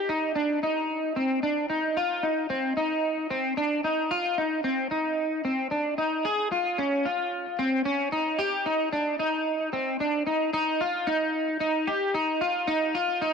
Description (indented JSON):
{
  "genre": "dream pop",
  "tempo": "112 BPM",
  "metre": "4/4",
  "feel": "straight",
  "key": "Eb major",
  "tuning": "A4 = 444 Hz",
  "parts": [
    { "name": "electric guitar at the edge of break-up", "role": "solo", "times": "0.0-13.3 s", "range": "C4 to Ab4", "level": "-24 LUFS", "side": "equal", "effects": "analog chorus, analog delay" }
  ],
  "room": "light reverb",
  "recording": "dry, gritty hardware recording",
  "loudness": "-24 LUFS",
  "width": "side -6 dB against mid",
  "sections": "0.0-10.5 A section; 10.5-13.3 B section",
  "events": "none",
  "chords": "none",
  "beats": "0.36 0.89 1.43 | 1.96 2.50 3.04 3.57 | 4.11 4.64 5.18 5.71 | 6.25 6.79 7.32 7.86 | 8.39 8.93 9.46 10.00 | 10.54 11.07 11.61 12.14 | 12.68 13.21"
}